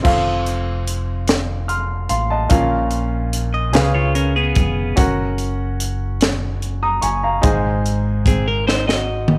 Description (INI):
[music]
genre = slow gospel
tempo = 49 BPM (dotted quarters)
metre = 6/8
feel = straight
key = unclear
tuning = A4 = 438 Hz
[part]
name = clear baby grand piano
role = accompaniment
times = 0.0-9.4 s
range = Ab2 to F6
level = -23 LUFS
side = equal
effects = none
[part]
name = deep dub fingered electric bass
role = bass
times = 0.0-9.4 s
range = F1 to Db2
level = -24 LUFS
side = equal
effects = none
[part]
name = crisp fusion drum kit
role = drums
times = 0.0-9.4 s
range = crash cymbal, hi-hat, kick drum, snare drum, toms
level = -22 LUFS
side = equal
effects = none
[part]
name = clean electric guitar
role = second line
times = 3.5-9.4 s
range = Cb4 to Eb5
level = -24 LUFS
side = equal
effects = phaser
[sound]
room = light reverb, studio ambience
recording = none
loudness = -19 LUFS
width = mono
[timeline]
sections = 0.1-9.4 A section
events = drum fill 8.7-9.4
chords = 0.1 F; 2.5 Bbm; 3.8 Db7; 5.0 Gb; 7.4 Ab